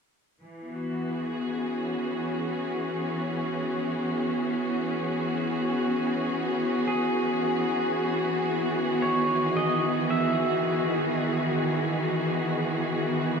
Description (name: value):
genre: ambient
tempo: 56 BPM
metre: 3/4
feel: straight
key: E major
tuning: A4 = 440 Hz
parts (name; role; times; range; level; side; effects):
- rich studio string section; sustained chords; 0.4-13.4 s; D#3 to G#4; -25 LUFS; equal; none
- pedal steel guitar; melody; 6.9-12.8 s; G#4 to E5; -30 LUFS; right 1 dB; ping-pong delay
room: wet huge ambient reverb, RT60 8.6 s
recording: dark, warm production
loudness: -25 LUFS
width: side -5 dB against mid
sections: 0.4-13.4 A section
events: none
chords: 0.4 E69